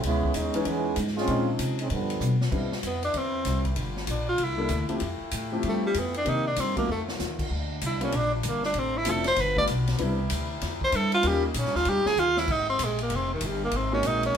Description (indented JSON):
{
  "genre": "jazz, big band swing",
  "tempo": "193 BPM",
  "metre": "4/4",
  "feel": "swing 64% on 8ths",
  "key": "C major",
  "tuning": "A4 = 444 Hz",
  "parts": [
    { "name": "clear trombone section", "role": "second line", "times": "0.0-2.4 s", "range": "D3 to F4", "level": "-28 LUFS", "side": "right 2 dB", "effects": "none" },
    { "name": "upright bass", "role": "bass", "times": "0.0-14.4 s", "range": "F1 to C3", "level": "-29 LUFS", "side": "equal", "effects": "none" },
    { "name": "swinging big-band drum kit", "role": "drums", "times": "0.0-14.4 s", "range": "crash cymbal, hi-hat, kick drum, ride cymbal, snare drum, toms", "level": "-34 LUFS", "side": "left 1 dB", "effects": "none" },
    { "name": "warm grand piano", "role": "accompaniment", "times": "0.5-11.4, 13.9-14.3 s", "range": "Eb3 to A4", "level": "-30 LUFS", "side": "left 2 dB", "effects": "none" },
    { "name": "clear trombone section", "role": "sustained chords", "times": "2.5-14.4 s", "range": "C3 to B4", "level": "-38 LUFS", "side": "left 1 dB", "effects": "none" },
    { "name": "clear tenor saxophone", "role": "melody", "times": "2.9-14.4 s", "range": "Eb3 to D5", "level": "-26 LUFS", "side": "equal", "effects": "none" }
  ],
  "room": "wet studio reverb, RT60 0.7 s",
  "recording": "band playing live in one room",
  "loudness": "-24 LUFS",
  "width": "side -8 dB against mid",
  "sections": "0.0-2.5 A section; 2.5-12.5 B section; 12.5-14.4 B section",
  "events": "trombone section solo 0.0-2.5; drum fill 2.2-2.5, 6.9-7.2, 12.2-12.5; tenor saxophone solo 2.5-14.4",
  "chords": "0.0 Dbm7; 1.3 Bbm11; 1.9 G7; 2.5 Cmaj7; 3.8 Gm7; 4.4 C13; 5.0 Fmaj9; 6.3 Cm9; 6.9 F7b9; 7.5 Bb69; 8.7 Dm7; 9.4 G7; 10.0 Cmaj7; 11.2 Eb7; 12.5 Abmaj9; 13.7 Ab7",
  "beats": "| 0.03 0.34 0.66 0.97 | 1.28 1.59 1.90 2.21 | 2.52 2.83 3.14 3.45 | 3.77 4.08 4.39 4.70 | 5.01 5.32 5.63 5.95 | 6.26 6.57 6.88 7.19 | 7.50 7.81 8.12 8.44 | 8.75 9.06 9.37 9.68 | 9.99 10.30 10.62 10.93 | 11.24 11.55 11.86 12.17 | 12.48 12.79 13.10 13.41 | 13.72 14.04 14.35"
}